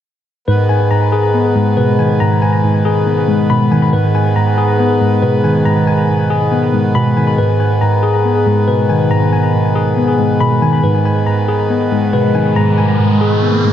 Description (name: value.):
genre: hip hop.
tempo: 139 BPM.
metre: 4/4.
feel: half-time.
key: G# minor.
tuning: A4 = 440 Hz.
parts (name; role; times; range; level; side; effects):
muted felt-like synth keys; accompaniment; 0.5-13.7 s; G#2 to D#3; -14 LUFS; right 2 dB; chorus, low-pass filter, tape echo.
pedal harmonium; sustained chords; 0.5-13.7 s; G#2 to B4; -20 LUFS; right 1 dB; none.
tine electric piano; arpeggios; 0.5-13.7 s; G#3 to B5; -15 LUFS; left 5 dB; lush chorus, low-pass filter, tape echo.
riser; sound effects; 12.0-13.7 s; none; -21 LUFS; right 2 dB; none.
room: moderate plate reverb, RT60 2.7 s.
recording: echo-heavy mix.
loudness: -11 LUFS.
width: side -10 dB against mid.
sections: 0.5-13.7 A section.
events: riser 12.0-13.7.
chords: 0.5 G#madd9.